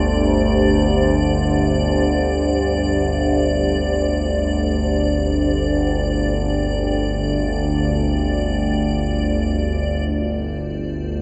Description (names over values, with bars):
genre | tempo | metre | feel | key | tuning
dark ambient drone | free time | none | none | unclear | A4 = 440 Hz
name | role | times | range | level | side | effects
dark analog pad | sustained chords | 0.0-10.1 s | D4 to C5 | -24 LUFS | equal | chorus
overtone-sweeping drone | drone | 0.0-11.2 s | G1 to D2 | -22 LUFS | equal | chorus, built-in reverb
icy glass pad | texture | 0.0-11.2 s | C5 to D5 | -29 LUFS | equal | chorus, built-in reverb
room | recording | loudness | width
wet huge ambient reverb, RT60 7.3 s | in a vast, echoing space | -19 LUFS | mono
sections
0.0-10.1 A section; 10.1-11.2 B section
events
none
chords
0.0 G5